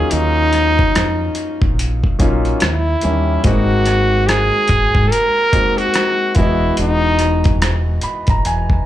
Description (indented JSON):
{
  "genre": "R&B, neo-soul",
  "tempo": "72 BPM",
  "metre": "4/4",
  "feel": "swing 62% on 16ths",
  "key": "Eb dorian",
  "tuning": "A4 = 440 Hz",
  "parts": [
    { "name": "stopped French horn", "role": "melody", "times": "0.0-7.6 s", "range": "D#4 to Bb4", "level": "-17 LUFS", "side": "equal", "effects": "slapback echo" },
    { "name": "warm concert grand piano", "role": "accompaniment", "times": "0.0-8.9 s", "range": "Eb3 to B5", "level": "-21 LUFS", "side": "left 1 dB", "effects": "slapback echo" },
    { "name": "deep dub fingered electric bass", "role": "bass", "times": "0.0-8.8 s", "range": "E1 to Ab2", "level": "-18 LUFS", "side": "equal", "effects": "none" },
    { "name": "dusty soul sampler-style drum kit", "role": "drums", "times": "0.1-8.8 s", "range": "hi-hat, kick drum, rim click", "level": "-17 LUFS", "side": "equal", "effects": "overdrive" }
  ],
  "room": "digital ambience",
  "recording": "live gig heard through the venue's PA, club reverb",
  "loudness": "-13 LUFS",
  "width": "side -13 dB against mid",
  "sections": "0.0-8.9 A section",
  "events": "grand piano fill 7.6-8.9",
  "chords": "0.0 Ebm9; 2.6 Eb7b9; 3.4 Ab9; 6.4 Emaj7",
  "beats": "| 0.11 0.94 1.78 2.61 | 3.44 4.28 5.11 5.94 | 6.78 7.61 8.44"
}